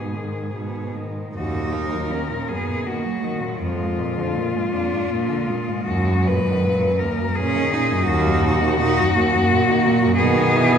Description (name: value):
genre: classical, lyrical piece for cello ensemble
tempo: 71-87 BPM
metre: 3/4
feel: rubato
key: Eb minor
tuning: A4 = 439 Hz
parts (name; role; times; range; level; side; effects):
- rich cello; melody; 0.0-10.8 s; F4 to Cb5; -23 LUFS; left 3 dB; none
- rich cello; second line; 0.0-10.8 s; Gb3 to Eb4; -24 LUFS; right 4 dB; none
- clear cello; accompaniment; 0.0-10.8 s; Eb2 to Gb3; -24 LUFS; left 1 dB; none
- rich cello; bass; 0.0-10.8 s; Eb2 to B2; -25 LUFS; right 1 dB; none
room: wet church reverb, RT60 2.7 s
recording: recorded in a church or concert hall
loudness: -18 LUFS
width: side -8 dB against mid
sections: 0.0-1.4 A section; 1.4-10.8 B section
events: none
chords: 0.0 G#m; 1.4 Ebm; 3.6 Bb7/F; 5.9 Ebm; 10.2 G#m/B